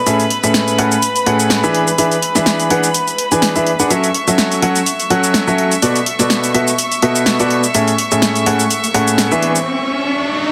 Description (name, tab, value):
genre	piano house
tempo	125 BPM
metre	4/4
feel	swing 55% on 16ths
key	unclear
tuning	A4 = 442 Hz
part	rich studio violin section	sustained chords	0.0-10.5 s	B4 to C#6	-22 LUFS	equal	none
part	clear baby grand piano	riff	0.1-9.6 s	A2 to G#5	-17 LUFS	equal	dub echo
part	house drum kit	drums	0.1-9.6 s	cabasa, hi-hat, snare drum	-20 LUFS	equal	none
part	riser	sound effects	8.7-10.5 s	none	-23 LUFS	equal	none
room	moderate plate reverb, RT60 1.8 s, small room ambience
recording	heavily compressed radio sound, multiband compression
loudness	-15 LUFS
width	mono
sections	0.0-10.5 A section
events	riser 8.7-10.5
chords	0.1 Amaj7; 1.7 E7; 3.9 F#m7; 5.8 Bm7; 7.7 Amaj7; 9.4 N.C.